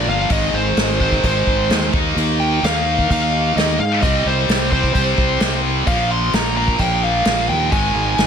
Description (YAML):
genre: hard rock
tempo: 129 BPM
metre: 4/4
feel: straight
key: C minor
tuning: A4 = 440 Hz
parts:
  - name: smooth overdriven lead guitar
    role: melody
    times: 0.0-8.3 s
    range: C5 to C6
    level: -20 LUFS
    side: equal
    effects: none
  - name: heavy high-gain guitar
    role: riff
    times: 0.0-8.3 s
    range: Ab2 to Eb4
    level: -20 LUFS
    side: equal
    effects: distortion, slapback echo
  - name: fuzz fingered electric bass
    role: bass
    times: 0.0-8.3 s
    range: G1 to Ab2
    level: -21 LUFS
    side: equal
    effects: overdrive
  - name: soft brush drum kit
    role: drums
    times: 0.3-8.3 s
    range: crash cymbal, kick drum, snare drum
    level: -21 LUFS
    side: equal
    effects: none
room: moderate lush hall reverb, RT60 1.8 s, studio ambience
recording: big arena sound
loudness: -15 LUFS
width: side -7 dB against mid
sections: 0.0-8.3 A section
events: none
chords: 0.3 Ab; 1.9 Eb5; 4.0 C5; 5.9 Bb5; 7.7 Ab5